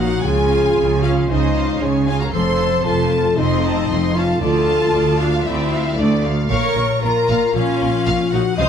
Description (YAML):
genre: cinematic, heroic adventure film score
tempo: 115 BPM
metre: 4/4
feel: straight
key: Bb minor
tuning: A4 = 440 Hz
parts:
  - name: warm symphonic violin section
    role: melody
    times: 0.0-8.7 s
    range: Bb4 to C6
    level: -29 LUFS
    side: left 1 dB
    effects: none
  - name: warm studio violin section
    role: second line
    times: 0.0-8.7 s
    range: Db5 to Eb6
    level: -25 LUFS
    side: left 2 dB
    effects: none
  - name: warm symphonic viola section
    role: accompaniment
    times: 0.0-8.7 s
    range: Ab3 to C5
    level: -24 LUFS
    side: right 3 dB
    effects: none
  - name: mellow French horn section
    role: sustained chords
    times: 0.0-8.7 s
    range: Db4 to Eb5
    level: -19 LUFS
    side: left 3 dB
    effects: none
  - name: concert harp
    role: arpeggios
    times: 0.0-8.7 s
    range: Bb2 to F5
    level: -26 LUFS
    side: left 12 dB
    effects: none
  - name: dark symphonic cello section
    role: bass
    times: 0.0-8.7 s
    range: D2 to Db3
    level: -23 LUFS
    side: right 3 dB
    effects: none
  - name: warm symphonic double bass section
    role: bass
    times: 0.0-8.7 s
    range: F1 to D2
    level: -23 LUFS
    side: right 4 dB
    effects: none
room: moderate scoring stage reverb, RT60 2.0 s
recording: none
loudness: -15 LUFS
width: side -8 dB against mid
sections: 0.0-8.7 A section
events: none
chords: 0.2 Db; 2.3 F; 4.4 Dm; 6.5 Bbm